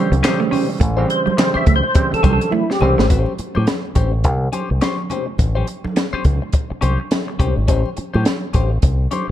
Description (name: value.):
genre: funk.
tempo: 105 BPM.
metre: 4/4.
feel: swing 60% on 16ths.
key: unclear.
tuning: A4 = 441 Hz.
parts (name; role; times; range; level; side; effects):
clean electric guitar; accompaniment; 0.0-9.3 s; C#4 to B#4; -25 LUFS; left 7 dB; wah.
clean electric guitar; riff; 0.0-3.1 s; G3 to C#4; -24 LUFS; right 9 dB; spring reverb.
auto-wah clav; stabs; 0.0-3.0 s; B#2 to B#3; -23 LUFS; right 4 dB; none.
fingered electric bass with an envelope filter; bass; 0.1-9.1 s; G#1 to A2; -17 LUFS; equal; none.
compact cocktail drum kit; drums; 0.1-9.3 s; handclaps, hi-hat, kick drum, snare drum; -18 LUFS; equal; none.
congas; percussion; 0.2-9.3 s; none; -28 LUFS; right 3 dB; none.
percussive tonewheel organ; melody; 1.1-3.1 s; E4 to E5; -20 LUFS; equal; chorus vibrato, slow rotary speaker.
room: light reverb, small room reverb.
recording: dark, warm production.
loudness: -15 LUFS.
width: side -12 dB against mid.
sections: 0.0-3.1 A section; 3.1-9.3 B section.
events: tonewheel organ solo 0.0-3.1; drum fill 2.5-3.1.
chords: 0.0 A7#9.